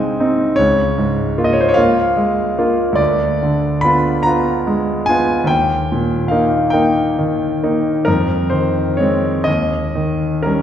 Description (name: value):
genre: classical, romantic nocturne for solo piano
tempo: 37-51 BPM (dotted quarters)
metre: 6/8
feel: rubato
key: unclear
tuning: A4 = 441 Hz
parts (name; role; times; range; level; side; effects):
- bright concert grand piano; solo; 0.0-10.6 s; C2 to B5; -14 LUFS; equal; none
room: wet concert hall reverb, RT60 2.0 s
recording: heard from further back in the room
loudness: -14 LUFS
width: side -9 dB against mid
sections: 0.0-10.6 A section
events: none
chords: 0.0 Ab/C; 0.6 Bbm7/Db; 3.0 Ddim7; 5.5 Eb; 8.1 Fm7; 9.5 Eb7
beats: | 0.59 1.77 | 3.00 4.25 | 5.51 6.74 | 8.07 9.47